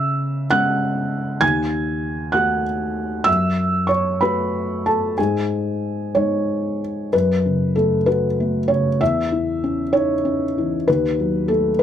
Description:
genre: neoclassical minimalist piano.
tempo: 64 BPM (dotted quarters).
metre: 6/8.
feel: rubato.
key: unclear.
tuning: A4 = 440 Hz.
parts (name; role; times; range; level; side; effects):
felt-muted upright piano; solo; 0.0-11.8 s; D#2 to G#6; -18 LUFS; equal; none.
room: light reverb.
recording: none.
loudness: -18 LUFS.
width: side -9 dB against mid.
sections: 0.0-7.1 A section; 7.1-11.8 B section.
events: none.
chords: 0.0 C#m; 1.4 D#dim; 3.3 F#m7; 5.2 G#sus4; 7.1 F#m; 9.0 C#madd9/E; 10.9 D#dim.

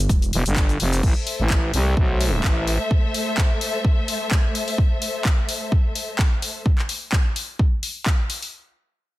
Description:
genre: bass house.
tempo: 128 BPM.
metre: 4/4.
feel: swing 54% on 16ths.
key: A minor.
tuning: A4 = 440 Hz.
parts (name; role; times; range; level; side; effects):
electronic kick drum; drums; 0.1-8.2 s; none; -19 LUFS; equal; overdrive, small room ambience.
house drum kit; drums; 0.1-8.5 s; crash cymbal, handclaps, hi-hat, shaker; -26 LUFS; left 1 dB; overdrive, small room ambience.
growling FM bass; bass; 0.3-2.8 s; E1 to C2; -20 LUFS; equal; sidechain pumping.
dark symphonic string section; sustained chords; 1.0-6.6 s; A3 to E5; -28 LUFS; left 2 dB; sidechain pumping.
room: light reverb, digital ambience.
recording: dense, heavily limited modern master.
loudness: -19 LUFS.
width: side -17 dB against mid.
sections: 0.0-1.0 A section; 1.0-8.5 B section.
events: drop 0.0-1.0.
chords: 0.0 Em; 1.0 Am.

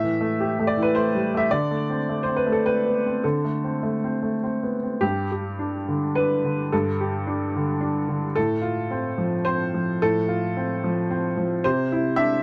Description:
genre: neoclassical minimalist piano.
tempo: 98-112 BPM.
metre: 3/4.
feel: rubato.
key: unclear.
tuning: A4 = 440 Hz.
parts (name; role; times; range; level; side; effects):
clear upright piano; solo; 0.0-12.4 s; G2 to E5; -24 LUFS; equal; none.
room: light reverb.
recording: close, detailed microphones.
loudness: -24 LUFS.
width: mono.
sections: 0.0-5.0 A section; 5.0-12.4 B section.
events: none.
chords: 0.0 Am7; 1.5 D5; 5.0 Gsus2; 8.4 F/A; 11.6 Cadd9.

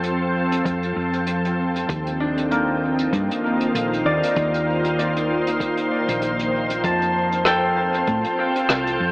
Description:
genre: ambient dub.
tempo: 97 BPM.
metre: 4/4.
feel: swing 56% on 16ths.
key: unclear.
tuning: A4 = 442 Hz.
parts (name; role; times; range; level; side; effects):
soft additive organ-like pad; sustained chords; 0.0-9.1 s; Eb3 to G5; -21 LUFS; equal; ensemble chorus, built-in reverb.
concert harp; arpeggios; 0.0-9.1 s; Bb3 to A5; -24 LUFS; equal; analog delay.
hollow-body short-scale fingered electric bass; bass; 0.0-9.1 s; Bb1 to A2; -27 LUFS; equal; none.
vintage brush drum kit; drums; 0.0-9.0 s; hi-hat, rim click; -27 LUFS; equal; dub echo.
electronic kick drum; drums; 0.7-8.2 s; none; -30 LUFS; equal; none.
room: moderate spring reverb, RT60 1.8 s, small room ambience.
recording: echo-heavy mix, AM radio sound.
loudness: -19 LUFS.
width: side -25 dB against mid.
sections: 0.0-9.1 A section.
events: none.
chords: 0.0 F; 1.9 Eb69; 6.8 F.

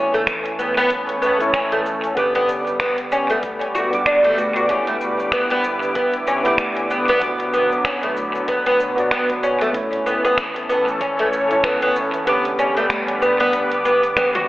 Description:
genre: organic downtempo.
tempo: 95 BPM.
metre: 4/4.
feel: swing 58% on 16ths.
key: unclear.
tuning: A4 = 441 Hz.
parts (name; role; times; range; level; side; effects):
tine electric piano; accompaniment; 0.0-14.5 s; D3 to D6; -26 LUFS; equal; medium stereo tremolo, sidechain pumping, analog delay.
warm analog pad; sustained chords; 0.0-14.5 s; D3 to D6; -24 LUFS; equal; wide subtle chorus, sidechain pumping.
oud; arpeggios; 0.0-14.5 s; A3 to F#4; -19 LUFS; equal; analog delay.
warm sub bass; bass; 0.0-12.2 s; E1 to D2; -48 LUFS; equal; sidechain pumping.
organic electronic drum kit; drums; 0.1-14.5 s; finger snaps, hi-hat, shaker, toms; -25 LUFS; equal; analog delay.
electronic kick drum; drums; 0.3-11.8 s; none; -38 LUFS; equal; none.
room: wet echo chamber reverb, RT60 1.6 s.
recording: echo-heavy mix, telephone sound.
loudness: -16 LUFS.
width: side -17 dB against mid.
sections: 0.0-14.5 A section.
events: drum fill 14.2-14.5.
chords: 0.0 A; 2.2 G; 4.7 Em7; 7.2 Bm; 9.7 A; 12.3 G.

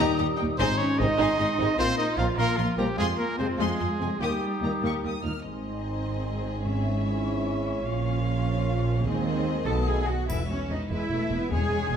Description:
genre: cinematic, heroic adventure film score.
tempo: 99 BPM (dotted quarters).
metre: 6/8.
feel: straight.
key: Ab major.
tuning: A4 = 440 Hz.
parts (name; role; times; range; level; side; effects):
rich symphonic violin section; melody; 0.0-12.0 s; B4 to F6; -38 LUFS; left 3 dB; none.
dark clarinet; second line; 0.0-10.1 s; Eb4 to A4; -38 LUFS; left 2 dB; none.
mellow hollow small flute group; second line; 0.0-10.1 s; C6 to Eb6; -38 LUFS; left 3 dB; none.
warm symphonic violin section; second line; 0.0-12.0 s; C4 to A5; -37 LUFS; left 5 dB; none.
dark symphonic viola section; accompaniment; 0.0-12.0 s; Ab3 to Eb4; -32 LUFS; equal; none.
dark French horn section; sustained chords; 0.0-10.1 s; G3 to F#4; -36 LUFS; left 4 dB; none.
warm trombone section; sustained chords; 0.0-10.1 s; Ab2 to A3; -36 LUFS; right 3 dB; none.
rich symphonic double bass section; bass; 0.0-12.0 s; E1 to F2; -30 LUFS; right 2 dB; none.
warm trumpet; stabs; 0.6-5.2 s; F4 to F5; -30 LUFS; right 2 dB; none.
rich symphonic cello section; bass; 0.6-12.0 s; Ab2 to A4; -31 LUFS; right 1 dB; none.
timpani; percussion; 0.6-1.1, 6.7-7.2, 10.3-12.0 s; E2 to Ab2; -34 LUFS; left 2 dB; none.
triangle; percussion; 10.3-11.1 s; none; -46 LUFS; left 1 dB; none.
room: moderate scoring stage reverb, RT60 1.6 s.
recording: none.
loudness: -24 LUFS.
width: side -8 dB against mid.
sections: 0.0-5.4 A section; 5.4-10.3 B section; 10.3-12.0 C section.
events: none.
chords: 0.0 Eb; 0.6 Ab; 1.8 Bbsus2; 3.0 Fm; 4.2 Eb; 5.4 Ab; 6.7 Dbm/Ab; 7.8 Bbm; 9.1 Ab/Eb; 9.7 B7; 10.3 E5.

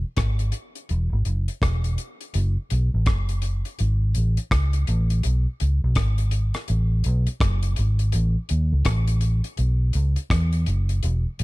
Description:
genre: roots reggae.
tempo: 83 BPM.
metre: 4/4.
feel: swing 62% on 16ths.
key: F# dorian.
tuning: A4 = 440 Hz.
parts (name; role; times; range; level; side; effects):
vintage muted fingered electric bass; bass; 0.0-11.4 s; E1 to E2; -20 LUFS; equal; none.
damped 70s drum kit; drums; 0.2-11.4 s; hi-hat, kick drum, rim click; -26 LUFS; equal; none.
room: little or no reverb.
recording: dark, warm production.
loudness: -20 LUFS.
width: side -21 dB against mid.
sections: 0.0-2.3 A section; 2.3-11.4 B section.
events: none.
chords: none.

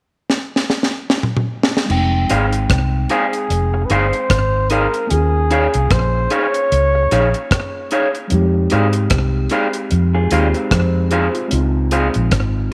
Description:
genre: lovers rock reggae.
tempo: 75 BPM.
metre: 4/4.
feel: swing 58% on 16ths.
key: F minor.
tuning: A4 = 438 Hz.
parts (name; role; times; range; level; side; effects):
deep reggae drum kit; drums; 0.3-12.5 s; crash cymbal, hi-hat, kick drum, rim click, snare drum, toms; -21 LUFS; equal; slapback echo.
mellow tine electric piano; accompaniment; 1.9-12.7 s; G3 to G5; -25 LUFS; equal; slapback echo.
vintage muted fingered electric bass; bass; 1.9-12.7 s; F1 to Ab2; -19 LUFS; equal; none.
electric guitar through a small old amp; stabs; 2.3-12.1 s; Eb4 to F5; -23 LUFS; equal; slapback echo.
breathy flugelhorn; melody; 3.1-7.9 s; Ab4 to Db5; -22 LUFS; equal; tape echo.
electric guitar through a small old amp; arpeggios; 10.1-11.5 s; Ab3 to Ab4; -29 LUFS; equal; none.
room: moderate echo chamber reverb, RT60 2.4 s.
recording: none.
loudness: -17 LUFS.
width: mono.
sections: 0.0-1.9 A section; 1.9-12.7 B section.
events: drum fill 0.3-1.9.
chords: 0.0 N.C.; 1.9 Fm7; 5.1 Eb9sus4; 8.3 Fm7; 11.5 Dbmaj7.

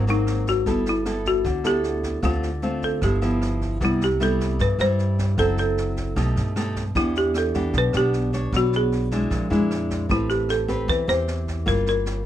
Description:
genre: bossa nova.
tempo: 153 BPM.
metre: 4/4.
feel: straight.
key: G major, C major from 3.8 s.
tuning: A4 = 440 Hz.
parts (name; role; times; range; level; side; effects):
folk marimba with hard mallets; melody; 0.0-12.3 s; Eb4 to C5; -24 LUFS; equal; none.
nylon-string guitar; accompaniment; 0.0-12.3 s; G2 to Db5; -25 LUFS; left 1 dB; none.
upright bass; bass; 0.0-12.3 s; F#1 to G2; -25 LUFS; equal; none.
jazz brush drum kit; drums; 0.1-12.1 s; kick drum, rim click, snare drum; -32 LUFS; right 1 dB; none.
room: little or no reverb.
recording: close, detailed microphones.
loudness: -20 LUFS.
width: side -11 dB against mid.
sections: 0.0-3.8 A section; 3.8-12.3 B section.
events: none.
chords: 0.0 Ab9; 0.7 G69; 2.2 Dm7; 3.0 G6; 3.8 Cmaj7; 5.4 F#m7b5; 6.2 Baug7; 7.0 Em7; 8.5 Bmadd9; 9.3 Bb7#11; 10.1 Am9; 11.7 Gm7.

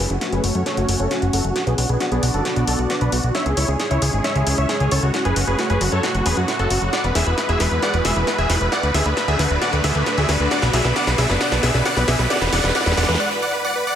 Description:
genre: uplifting trance.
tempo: 134 BPM.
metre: 4/4.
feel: straight.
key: F# minor.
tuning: A4 = 438 Hz.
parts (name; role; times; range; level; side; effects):
big supersaw lead; melody; 0.0-14.0 s; B3 to F#5; -22 LUFS; equal; low-pass filter, dub echo.
lush unison pad; sustained chords; 0.0-13.2 s; G#3 to D5; -26 LUFS; equal; chorus, phaser.
plucky analog bass; bass; 0.0-13.2 s; D1 to F#2; -21 LUFS; equal; none.
riser; sound effects; 0.0-13.2 s; none; -29 LUFS; equal; none.
big-room dance drum kit; drums; 0.1-13.2 s; hi-hat, snare drum, toms; -25 LUFS; equal; high-pass filter on hats, studio reverb, high-pass filter on toms, high-pass filter on snare.
room: moderate lush hall reverb, RT60 2.1 s.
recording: none.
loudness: -17 LUFS.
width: side -9 dB against mid.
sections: 0.0-14.0 A section.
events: build-up 0.0-14.0; drum fill 0.0-13.2; riser 0.0-13.2; filter sweep on supersaw synth 0.0-14.0; break 13.2-14.0.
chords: 0.0 F#m; 1.6 Bm; 3.3 C#m; 5.1 F#m; 6.9 Eadd9; 8.7 D; 10.5 Bm; 12.3 Eadd9.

